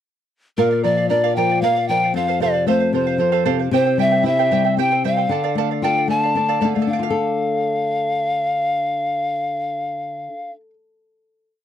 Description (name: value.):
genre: andean folk, Andean ensemble.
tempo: 76 BPM (dotted quarters).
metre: 6/8.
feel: straight.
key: D minor.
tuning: A4 = 440 Hz.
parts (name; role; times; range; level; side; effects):
polished pan flute; melody; 0.6-10.5 s; Bb4 to A5; -19 LUFS; left 1 dB; none.
charango; accompaniment; 0.6-10.7 s; E4 to G5; -24 LUFS; right 21 dB; none.
flamenco guitar; accompaniment; 0.6-10.7 s; F2 to A4; -22 LUFS; left 4 dB; none.
room: light reverb.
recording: dry, close 1970s-style studio recording.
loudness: -17 LUFS.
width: side -10 dB against mid.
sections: 0.6-6.9 A section; 6.9-10.0 final chord.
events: none.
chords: 0.6 Bb; 2.1 F; 3.7 C; 5.3 Dm.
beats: | 0.58 1.36 | 2.15 2.94 | 3.72 4.51 | 5.29 6.08 | 6.87 7.66 | 8.44 9.23.